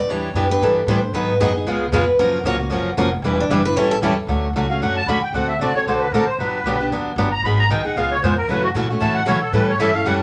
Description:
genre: acoustic string swing (jazz manouche)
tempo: 229 BPM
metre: 4/4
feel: swing 57% on 8ths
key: D major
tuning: A4 = 440 Hz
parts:
  - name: picked steel-string acoustic guitar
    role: melody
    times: 0.0-4.0 s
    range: D4 to D#5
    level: -23 LUFS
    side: equal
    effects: none
  - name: upright bass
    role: bass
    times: 0.0-10.2 s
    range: E1 to B2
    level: -27 LUFS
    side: equal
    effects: none
  - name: picked steel-string acoustic guitar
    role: accompaniment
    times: 0.1-10.2 s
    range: C#3 to B4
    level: -23 LUFS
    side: equal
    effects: none
  - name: picked steel-string acoustic guitar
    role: accompaniment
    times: 0.1-4.1, 8.5-10.2 s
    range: C#3 to B4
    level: -26 LUFS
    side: equal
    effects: none
  - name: musette accordion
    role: second line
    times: 4.7-10.1 s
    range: F#4 to B5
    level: -24 LUFS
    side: equal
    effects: none
room: wet studio ambience, RT60 0.5 s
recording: none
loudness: -19 LUFS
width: mono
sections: 0.0-4.3 A section; 4.3-10.2 A section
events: steel-string acoustic guitar solo 0.0-4.3; accordion solo 4.3-10.2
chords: 0.1 Em7; 1.1 G#m7; 1.7 C#7; 2.2 F#maj7; 3.2 Em9; 3.8 A7; 4.3 Dmaj7; 5.3 D7; 6.4 Gmaj7; 7.4 G#m7; 8.0 C#7; 8.5 F#m7; 9.5 A7

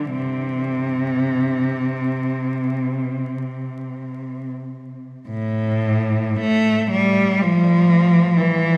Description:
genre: classical, free, expressive piece for unaccompanied cello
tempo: 34-62 BPM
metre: 4/4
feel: rubato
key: unclear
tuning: A4 = 440 Hz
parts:
  - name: rich cello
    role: solo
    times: 0.0-8.8 s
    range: A2 to A3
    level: -20 LUFS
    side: equal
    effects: none
room: wet cathedral reverb, RT60 5.7 s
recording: recorded in a church or concert hall, vinyl crackle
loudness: -20 LUFS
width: mono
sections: 0.0-5.3 A section; 5.3-8.8 B section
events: none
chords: none

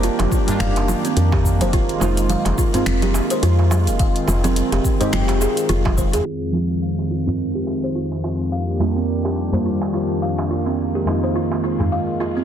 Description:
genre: organic downtempo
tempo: 106 BPM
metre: 4/4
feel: swing 57% on 16ths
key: unclear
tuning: A4 = 440 Hz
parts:
  - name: deep mellow chord stab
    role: accompaniment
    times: 0.0-11.9 s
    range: F2 to Bb4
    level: -24 LUFS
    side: right 1 dB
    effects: chorus, phaser, sidechain pumping, ping-pong delay
  - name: warm analog pad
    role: sustained chords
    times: 0.0-12.4 s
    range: F2 to G4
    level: -23 LUFS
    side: equal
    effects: chorus, sidechain pumping
  - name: buzzing kalimba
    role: arpeggios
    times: 0.0-12.4 s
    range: C4 to F5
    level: -24 LUFS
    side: right 2 dB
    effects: low-pass filter, ping-pong delay
  - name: woody FM bass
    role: bass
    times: 0.0-6.2 s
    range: F1 to F2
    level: -19 LUFS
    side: left 1 dB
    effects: tube saturation, sidechain pumping
  - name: deep house drum kit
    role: drums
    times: 0.0-12.4 s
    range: cabasa, congas, finger snaps, hi-hat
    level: -27 LUFS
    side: right 2 dB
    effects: small room ambience, soft clipping on snare
  - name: darbuka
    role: percussion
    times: 0.2-12.3 s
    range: none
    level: -30 LUFS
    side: right 2 dB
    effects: none
  - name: electronic kick drum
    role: drums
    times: 0.3-6.1 s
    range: none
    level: -20 LUFS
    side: left 1 dB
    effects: small room ambience
room: moderate lush hall reverb, RT60 2.4 s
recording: dense, heavily limited modern master, low-pass filter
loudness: -17 LUFS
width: side -9 dB against mid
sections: 0.0-6.3 A section; 6.3-12.4 B section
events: filter sweep on kalimba 6.3-12.4; filter sweep on synth stab 6.3-12.4; filter sweep 6.3-12.4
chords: 0.0 Ebmaj7/F; 1.7 Bb7sus4/F; 4.0 Fm7; 6.3 Ab6/F; 8.5 Ebmaj7/F; 10.8 Bb7sus4/F

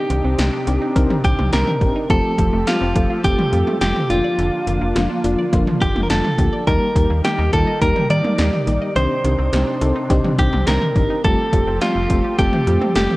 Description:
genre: synth-pop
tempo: 105 BPM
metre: 4/4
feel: straight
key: unclear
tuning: A4 = 441 Hz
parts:
  - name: direct-recorded clean electric guitar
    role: melody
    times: 0.0-13.2 s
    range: F4 to D5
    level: -21 LUFS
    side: equal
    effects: none
  - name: FM electric piano with tremolo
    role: accompaniment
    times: 0.0-13.2 s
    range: F3 to Bb4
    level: -23 LUFS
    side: left 2 dB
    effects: none
  - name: lush unison pad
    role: sustained chords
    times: 0.0-13.2 s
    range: C3 to Bb4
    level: -28 LUFS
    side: equal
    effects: chorus, phaser
  - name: analog pluck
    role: arpeggios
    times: 0.1-13.1 s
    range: D3 to Eb5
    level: -28 LUFS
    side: right 1 dB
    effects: chorus, phaser, tape echo
  - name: slap-like FM bass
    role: bass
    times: 0.1-13.1 s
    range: F1 to Eb3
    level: -20 LUFS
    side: equal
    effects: none
  - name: 80s electronic pad drums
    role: drums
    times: 0.1-13.2 s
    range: hi-hat, kick drum, snare drum, toms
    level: -20 LUFS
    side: equal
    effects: gated reverb on snare and toms
room: moderate concert hall reverb, RT60 2.3 s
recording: worn, warbling old tape, cassette tape, warbly pitch drift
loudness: -15 LUFS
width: side -19 dB against mid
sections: 0.0-13.2 A section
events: none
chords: 0.0 Cmadd9; 2.1 Fadd9; 4.1 Bb/F; 6.7 Eb; 9.0 Cmadd9; 11.2 Fadd9

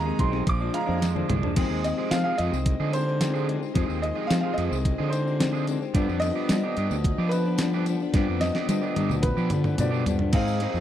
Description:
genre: indie rock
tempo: 110 BPM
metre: 4/4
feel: straight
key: unclear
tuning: A4 = 440 Hz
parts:
  - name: bright upright piano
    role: melody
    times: 0.0-10.8 s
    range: B4 to D6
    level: -30 LUFS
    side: right 2 dB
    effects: slapback echo
  - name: string machine, violins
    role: sustained chords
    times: 0.0-10.8 s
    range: F3 to Eb5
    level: -39 LUFS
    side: equal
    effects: none
  - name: fuzz guitar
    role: riff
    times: 0.0-10.8 s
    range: Eb3 to Ab4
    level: -33 LUFS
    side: right 12 dB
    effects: distortion, wide subtle chorus, slapback echo
  - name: fuzz fingered electric bass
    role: bass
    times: 0.0-10.8 s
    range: Bb1 to G3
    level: -27 LUFS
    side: equal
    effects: overdrive
  - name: electric guitar through a small old amp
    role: riff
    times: 0.1-10.8 s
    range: F2 to Eb4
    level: -30 LUFS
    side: left 8 dB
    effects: none
  - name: crisp 8-bit digital drum machine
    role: drums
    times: 0.2-10.7 s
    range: crash cymbal, hi-hat, kick drum, snare drum, tambourine, toms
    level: -27 LUFS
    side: equal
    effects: none
  - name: tambourine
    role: percussion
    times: 1.0-10.8 s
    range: none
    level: -46 LUFS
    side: left 24 dB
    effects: none
room: little or no reverb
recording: dry, close 1970s-style studio recording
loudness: -22 LUFS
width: side -11 dB against mid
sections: 0.0-1.6 A section; 1.6-10.3 B section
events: upright piano solo 0.0-1.6; drum fill 1.0-1.6, 8.1-10.3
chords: 0.5 Bb7; 1.6 Fm7; 6.0 G7

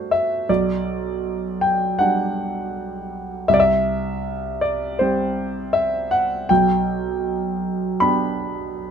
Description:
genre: classical, romantic character piece for solo piano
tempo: 80 BPM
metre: 4/4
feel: rubato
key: G major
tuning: A4 = 440 Hz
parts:
  - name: clear concert grand piano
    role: solo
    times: 0.0-8.9 s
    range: B1 to B5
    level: -19 LUFS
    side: equal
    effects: none
room: light reverb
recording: minimal, uncompressed stereo recording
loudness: -19 LUFS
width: side -7 dB against mid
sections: 0.0-8.9 A section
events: none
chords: 0.5 G/B; 3.5 C; 6.5 G/B

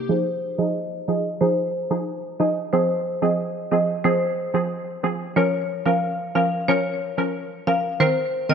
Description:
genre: dancehall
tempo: 91 BPM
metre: 4/4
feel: straight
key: F minor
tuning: A4 = 439 Hz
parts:
  - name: picked steel-string acoustic guitar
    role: arpeggios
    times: 0.0-0.7 s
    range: Bb3 to G4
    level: -34 LUFS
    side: left 2 dB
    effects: analog chorus
  - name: marimba with medium hard mallets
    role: melody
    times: 0.1-8.5 s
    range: C5 to F5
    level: -24 LUFS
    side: left 1 dB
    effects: low-pass filter, diffuse ambient delay
  - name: wavetable chord stab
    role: accompaniment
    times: 0.1-8.5 s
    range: Eb3 to Bb4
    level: -23 LUFS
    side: right 2 dB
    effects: lush chorus, low-pass filter
room: moderate plate reverb, RT60 2.1 s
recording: dreamy mix soaked in reverb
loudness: -20 LUFS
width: side -7 dB against mid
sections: 0.1-8.5 A section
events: filter sweep 0.1-8.5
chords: 0.1 Fm7; 2.7 Ab6; 5.4 Bbm; 8.0 Cm7

